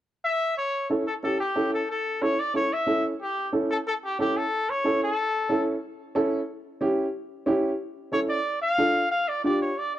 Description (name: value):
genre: latin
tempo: 183 BPM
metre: 4/4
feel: straight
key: unclear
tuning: A4 = 439 Hz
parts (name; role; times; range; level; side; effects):
- clear trumpet; melody; 0.2-5.6, 8.1-10.0 s; G4 to F5; -25 LUFS; left 1 dB; none
- warm upright piano; accompaniment; 0.9-9.7 s; C#4 to A4; -25 LUFS; right 1 dB; none
room: light reverb, small room ambience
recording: dry, close 1970s-style studio recording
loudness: -24 LUFS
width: side -12 dB against mid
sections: 0.6-3.2 A section; 3.2-10.0 B section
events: none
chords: 0.0 N.C.; 0.6 A; 8.5 Dm